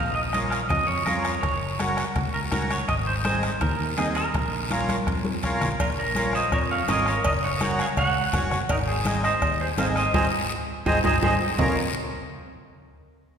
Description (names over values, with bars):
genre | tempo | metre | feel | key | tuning
latin, cumbia | 165 BPM | 4/4 | straight | Bb minor | A4 = 440 Hz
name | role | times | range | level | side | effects
clean electric guitar | melody | 0.0-11.8 s | Eb4 to Ab5 | -26 LUFS | right 2 dB | spring reverb
fingered electric bass | bass | 0.0-11.8 s | Gb1 to F2 | -30 LUFS | equal | none
accordion | accompaniment | 0.3-11.8 s | C4 to Db5 | -30 LUFS | equal | none
bombo | percussion | 0.3-11.7 s | none | -30 LUFS | left 2 dB | none
congas | percussion | 0.3-11.7 s | none | -32 LUFS | equal | none
guiro | percussion | 0.3-11.7 s | none | -36 LUFS | left 4 dB | none
timbales and cowbell | percussion | 0.3-11.7 s | none | -34 LUFS | right 4 dB | none
room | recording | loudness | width
wet concert hall reverb, RT60 2.2 s | recorded in a church or concert hall | -22 LUFS | side -7 dB against mid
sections
0.0-5.8 A section; 5.8-11.6 B section; 11.6-13.0 C section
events
drum fill 4.9-5.8, 10.7-11.6; band accent 10.1-11.6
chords
0.0 Bbm; 1.4 Gb; 2.9 Ab; 4.3 Bbm; 7.2 Gb; 8.7 Ab; 11.6 Bbm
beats
0.34 0.70 1.07 | 1.43 1.79 2.16 2.52 | 2.88 3.25 3.61 3.97 | 4.34 4.70 5.06 5.43 | 5.79 6.15 6.52 6.88 | 7.24 7.60 7.97 8.33 | 8.69 9.05 9.42 9.78 | 10.14 10.50 10.87 11.23 | 11.59